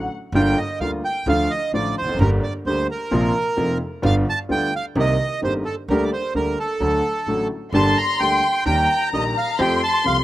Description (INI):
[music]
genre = tango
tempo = 130 BPM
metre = 4/4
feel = rubato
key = G minor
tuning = A4 = 438 Hz
[part]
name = dark studio violin section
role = second line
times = 0.0-0.1, 7.7-10.2 s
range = Bb5 to C6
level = -22 LUFS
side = left 4 dB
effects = none
[part]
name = clear concert grand piano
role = accompaniment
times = 0.0-10.2 s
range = F1 to G4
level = -22 LUFS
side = equal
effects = slapback echo
[part]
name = upright bass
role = bass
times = 0.0-10.2 s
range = E1 to F2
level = -25 LUFS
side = right 1 dB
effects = none
[part]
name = bandoneon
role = melody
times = 0.4-10.2 s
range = A4 to Bb5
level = -22 LUFS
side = right 2 dB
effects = none
[sound]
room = little or no reverb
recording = recorded outdoors, with no room sound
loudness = -18 LUFS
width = side -15 dB against mid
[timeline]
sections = 0.3-10.2 A section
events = none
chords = 0.3 Gm7; 1.3 Dm; 2.2 Gm; 3.1 Bbsus2; 4.0 G7; 5.0 Cm7; 5.9 Gm/D; 6.8 D; 7.7 Gm; 8.7 Eb; 9.6 Fadd9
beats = | 0.34 0.81 1.27 1.74 | 2.20 2.65 3.12 3.58 | 4.04 4.50 4.96 5.42 | 5.88 6.34 6.81 7.27 | 7.74 8.20 8.66 9.13 | 9.60 10.06